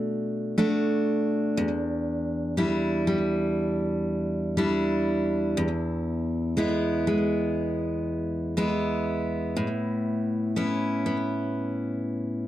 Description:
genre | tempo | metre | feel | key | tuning
pop | 60 BPM | 4/4 | straight | unclear | A4 = 439 Hz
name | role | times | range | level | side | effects
picked steel-string acoustic guitar | solo | 0.0-12.5 s | E2 to F#4 | -24 LUFS | equal | slapback echo
room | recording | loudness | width
light reverb | dry, close 1970s-style studio recording | -24 LUFS | side -13 dB against mid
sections
0.0-12.5 A section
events
none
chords
0.0 Bm7; 1.6 Em7; 5.6 E; 9.6 Aadd9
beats
0.58 | 1.58 2.58 3.58 4.58 | 5.58 6.58 7.58 8.58 | 9.58 10.58 11.58

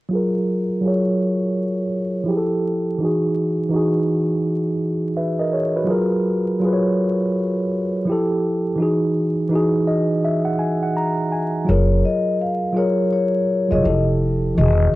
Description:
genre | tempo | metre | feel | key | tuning
hip hop | 83 BPM | 4/4 | swing 62% on 16ths | F# major | A4 = 441 Hz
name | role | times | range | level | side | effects
mellow tine electric piano | accompaniment | 0.1-15.0 s | D#3 to A#5 | -18 LUFS | equal | medium stereo tremolo, low-pass filter
vibraphone with soft mallets | melody | 11.7-14.9 s | C#5 to E#5 | -22 LUFS | left 4 dB | low-pass filter
upright bass | bass | 11.7-14.9 s | E1 to F#1 | -17 LUFS | equal | none
room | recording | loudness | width
moderate studio reverb, RT60 0.6 s | worn, warbling old tape, cassette tape, vinyl crackle, warbly pitch drift | -18 LUFS | side -18 dB against mid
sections
0.1-11.7 A section; 11.7-15.0 B section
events
filter sweep on tine electric piano 0.1-11.7; tine electric piano fill 9.5-11.7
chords
0.1 F#maj9; 2.3 Fmaj9; 3.0 Emaj9; 5.9 F#maj9; 8.1 Fmaj9; 8.8 Emaj9; 11.7 F#maj9; 13.8 Fmaj9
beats
| 0.11 0.83 1.55 2.27 | 3.00 3.72 4.44 5.17 | 5.89 6.61 7.33 8.06 | 8.78 9.50 10.23 10.95 | 11.67 12.39 13.12 13.84 | 14.56

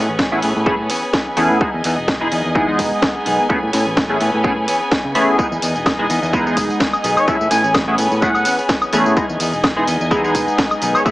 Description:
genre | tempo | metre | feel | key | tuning
filtered disco house | 127 BPM | 4/4 | swing 54% on 16ths | E major | A4 = 439 Hz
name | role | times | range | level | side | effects
bright symphonic violin section | sustained chords | 0.0-11.1 s | C#4 to G#5 | -24 LUFS | equal | sidechain pumping, low-pass filter
direct-recorded clean electric guitar | riff | 0.0-11.1 s | D#3 to G#4 | -24 LUFS | left 1 dB | sidechain pumping, low-pass filter
fingered electric bass | bass | 0.0-11.1 s | E1 to C#3 | -22 LUFS | equal | sidechain pumping, low-pass filter
electronic kick drum | drums | 0.2-11.1 s | none | -21 LUFS | equal | overdrive
house drum kit | drums | 0.2-11.1 s | hi-hat, snare drum, tambourine, woodblock | -21 LUFS | equal | overdrive, sidechain pumping on hats, sidechain pumping on cymbals, sidechain pumping on perc
funky polysynth comp | accompaniment | 0.3-11.1 s | G#3 to G#4 | -18 LUFS | equal | chorus, phaser, sidechain pumping, low-pass filter
mellow trumpet section | melody | 7.2-11.1 s | C#5 to G#5 | -18 LUFS | equal | vintage 12-bit sampler grit, sidechain pumping, low-pass filter
room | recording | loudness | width
moderate echo chamber reverb, RT60 1.2 s | small speaker sound | -14 LUFS | side -17 dB against mid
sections
0.0-11.1 A section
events
none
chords
0.0 Amaj9; 1.6 Emaj7; 3.5 Amaj9; 5.4 Emaj7; 7.3 Amaj9; 9.2 Emaj7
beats
0.19 0.66 1.14 | 1.61 2.08 2.55 3.03 | 3.50 3.97 4.44 4.92 | 5.39 5.86 6.33 6.81 | 7.28 7.75 8.22 8.70 | 9.17 9.64 10.11 10.59 | 11.06

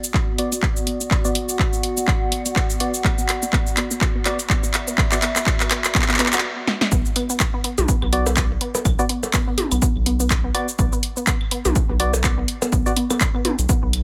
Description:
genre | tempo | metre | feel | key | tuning
minimal techno | 124 BPM | 4/4 | swing 57% on 16ths | B minor | A4 = 441 Hz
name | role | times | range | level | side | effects
house drum kit | drums | 0.0-14.0 s | handclaps, hi-hat, shaker, snare drum | -25 LUFS | equal | none
warbly tape-like pad | texture | 0.0-6.4 s | B3 to F#5 | -30 LUFS | equal | chorus, built-in reverb, sidechain pumping
resonant blip pluck | riff | 0.1-13.9 s | B3 to F#4 | -30 LUFS | equal | phaser, sidechain pumping, delay
electronic kick drum | drums | 0.1-13.8 s | none | -24 LUFS | equal | none
percussive organ stab | stabs | 0.4-5.2, 8.1-12.9 s | B3 to D5 | -29 LUFS | equal | chorus, digital delay
round analog bass | bass | 6.9-14.0 s | B1 | -25 LUFS | equal | sidechain pumping
electronic claves, toms and percussion blips | percussion | 7.2-14.0 s | none | -28 LUFS | equal | digital delay
room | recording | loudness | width
light reverb | none | -20 LUFS | mono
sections
0.0-6.9 A section; 6.9-14.0 B section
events
build-up 0.0-6.9; drum fill 0.0-6.4, 6.7; filter sweep on synth arpeggio sound 0.0-6.9; filter sweep on synth stab 0.0-6.9; stop 6.4-6.9; drop 6.9-14.0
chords
0.0 Bm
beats
0.14 0.63 | 1.11 1.59 2.08 2.56 | 3.05 3.53 4.01 4.50 | 4.98 5.47 5.95 6.43 | 6.92 7.40 7.88 8.37 | 8.85 9.34 9.82 10.30 | 10.79 11.27 11.76 12.24 | 12.72 13.21 13.69

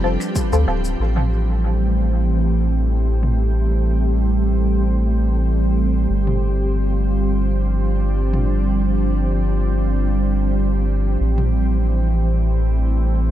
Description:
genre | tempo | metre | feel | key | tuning
ambient dub | free time | none | none | A minor | A4 = 440 Hz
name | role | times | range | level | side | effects
soft additive organ-like pad | sustained chords | 0.0-13.3 s | E3 to G4 | -22 LUFS | right 2 dB | ensemble chorus, built-in reverb
felt-muted upright piano | arpeggios | 0.0-1.0 s | B4 | -40 LUFS | equal | none
filtered dub chord stab | stabs | 0.0-0.8 s | C4 to A4 | -27 LUFS | left 3 dB | phaser, lush chorus, dub echo
soft dub sub bass | bass | 0.0-13.3 s | D1 to D2 | -18 LUFS | equal | none
electronic shaker and toms | drums | 0.2-11.5 s | none | -29 LUFS | equal | overdrive, low-pass filter on perc, low-pass filter on toms, low-pass filter on snare, dub echo
electronic kick drum | drums | 0.4-0.5 s | none | -23 LUFS | equal | overdrive
room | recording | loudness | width
little or no reverb | none | -16 LUFS | side -12 dB against mid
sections
1.0-13.3 A section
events
filter sweep on drum 1.0-13.3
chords
0.0 G7sus4; 1.0 Am7; 6.1 G7sus4; 11.2 Am7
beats
free time

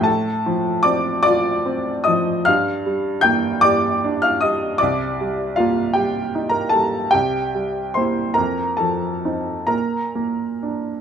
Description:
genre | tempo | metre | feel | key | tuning
classical, romantic nocturne for solo piano | 43-53 BPM (dotted quarters) | 6/8 | rubato | unclear | A4 = 440 Hz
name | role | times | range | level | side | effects
clear upright piano | solo | 0.0-11.0 s | C2 to G6 | -17 LUFS | equal | none
room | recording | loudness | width
light reverb | none | -17 LUFS | side -8 dB against mid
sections
0.0-11.0 A section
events
none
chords
0.1 F/A; 2.5 Gm; 4.8 Cm7; 7.1 C7; 8.4 F7; 9.7 Bb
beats
| 0.08 1.27 | 2.47 3.63 | 4.81 5.96 | 7.12 8.38 | 9.72

